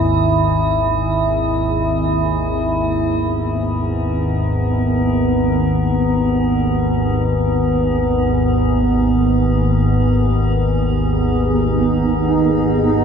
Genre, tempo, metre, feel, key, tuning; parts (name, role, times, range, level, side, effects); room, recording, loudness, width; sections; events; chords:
dark ambient drone; free time; G# minor; A4 = 439 Hz
organ-like drone; drone; 0.0-13.0 s; G#1 to D#2; -17 LUFS; left 1 dB; ensemble chorus, built-in reverb
metallic inharmonic drone; texture; 0.0-13.0 s; B3 to E4; -19 LUFS; right 2 dB; chorus, built-in reverb
granular cloud pad; sustained chords; 10.8-13.0 s; B3 to D#5; -18 LUFS; right 2 dB; built-in reverb, wide subtle chorus
wet huge ambient reverb, RT60 8.5 s; dreamy mix soaked in reverb; -15 LUFS; side -7 dB against mid
0.0-3.0 A section; 3.0-13.0 B section
0.0 Emaj7/G#; 3.0 G#m